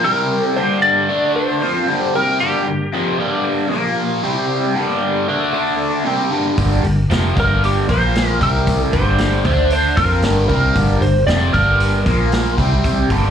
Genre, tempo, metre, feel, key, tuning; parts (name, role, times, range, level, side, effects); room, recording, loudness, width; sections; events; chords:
blues rock power trio and southern rock; 115 BPM; 4/4; straight; G minor; A4 = 441 Hz
lightly driven lead guitar; melody; 0.0-12.5 s; G4 to D5; -19 LUFS; equal; wah, slapback echo
overdriven tonewheel organ; sustained chords; 0.0-13.3 s; F3 to D5; -30 LUFS; right 4 dB
overdriven electric guitar; riff; 0.0-13.3 s; F2 to F4; -18 LUFS; left 1 dB; phaser, slapback echo
vintage muted fingered electric bass; bass; 6.6-13.3 s; F1 to F2; -18 LUFS; equal
vintage drum kit; drums; 6.6-13.2 s; hi-hat, kick drum, snare drum; -21 LUFS; equal
light reverb; live gig heard through the venue's PA, club reverb; -14 LUFS; side -8 dB against mid
0.0-13.3 A section
0.0 C5; 0.6 Gm; 1.1 D5; 1.6 Gm; 3.7 Bb5; 4.2 C5; 4.8 Gm; 5.5 D5; 6.1 Gm; 7.9 Bb5; 8.4 C5; 8.9 Gm; 9.5 D5; 10.0 Gm; 12.1 Bb5; 12.6 C5